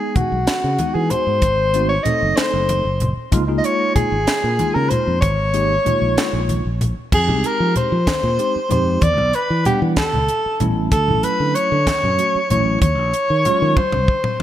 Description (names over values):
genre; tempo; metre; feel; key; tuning
electric jazz fusion; 63 BPM (dotted quarters); 6/8; straight; unclear; A4 = 440 Hz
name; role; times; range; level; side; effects
mellow soprano saxophone; melody; 0.0-14.4 s; F#4 to Eb5; -19 LUFS; left 1 dB; none
tine electric piano; accompaniment; 0.0-14.4 s; F#3 to F#5; -25 LUFS; right 1 dB; medium stereo tremolo
tight funk drum kit; drums; 0.2-14.4 s; crash cymbal, hi-hat, kick drum, snare drum, toms; -21 LUFS; equal; gated reverb
congas; percussion; 0.2-14.2 s; none; -25 LUFS; left 1 dB; none
fingered electric bass; bass; 0.3-14.4 s; Gb1 to F3; -20 LUFS; equal; none
room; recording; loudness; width
light reverb, studio reverb; bright 1980s-style digital production; -15 LUFS; side -11 dB against mid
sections
0.0-7.1 A section; 7.1-14.4 B section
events
drum fill 13.8-14.4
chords
0.0 Emaj9; 1.4 Ab7b9; 3.3 Db69; 7.1 Fm7; 9.0 Em9; 10.0 A7; 10.9 Dmaj9; 12.8 Ebm11; 13.8 N.C.